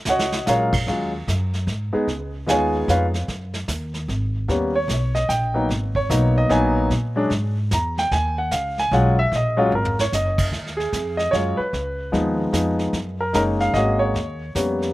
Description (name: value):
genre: jazz piano trio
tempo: 149 BPM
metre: 3/4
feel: swing 64% on 8ths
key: Eb minor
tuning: A4 = 441 Hz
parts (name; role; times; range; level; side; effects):
- warm grand piano; melody; 0.1-14.9 s; F3 to Bb5; -20 LUFS; equal; slapback echo
- upright bass; bass; 0.1-14.9 s; Gb1 to Bb2; -24 LUFS; equal; none
- vintage brush drum kit; drums; 0.1-14.9 s; brushed snare drum, crash cymbal, hi-hat, kick drum, snare drum, toms; -27 LUFS; right 1 dB; none
room: little or no reverb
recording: recorded outdoors, with no room sound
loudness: -19 LUFS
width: side -17 dB against mid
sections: 0.9-10.5 A section; 10.5-14.9 B section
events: drum fill 0.0-0.5, 9.7-10.1; grand piano solo 0.0-10.5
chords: 0.0 Ebm11; 0.9 Ebmadd11; 2.1 Db7; 3.3 Gbsus2; 4.5 Eb7b13; 5.7 Abm9; 6.9 Bb7(no3); 8.1 Ebm11; 11.7 Db7; 12.9 Gb69; 14.2 Eb7b13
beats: 0.06 0.47 | 0.87 1.27 1.67 | 2.08 2.48 2.88 | 3.28 3.69 4.09 | 4.49 4.89 5.30 | 5.70 6.10 6.50 | 6.90 7.31 7.71 | 8.11 8.51 8.91 | 9.32 9.72 10.12 | 10.53 10.93 11.33 | 11.74 12.14 12.54 | 12.95 13.35 13.75 | 14.16 14.56